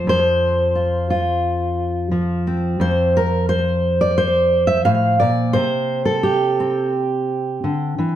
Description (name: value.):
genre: folk, solo fingerstyle acoustic guitar.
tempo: 88 BPM.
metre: 4/4.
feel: straight.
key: F major.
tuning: A4 = 440 Hz.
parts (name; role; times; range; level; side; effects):
fingerpicked steel-string acoustic guitar; solo; 0.0-8.2 s; F2 to F5; -16 LUFS; equal; slapback echo.
room: light reverb.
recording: dark, warm production.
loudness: -16 LUFS.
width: side -11 dB against mid.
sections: 0.0-8.2 A section.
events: none.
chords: 0.0 F5; 2.8 Bbsus2; 5.5 Csus2.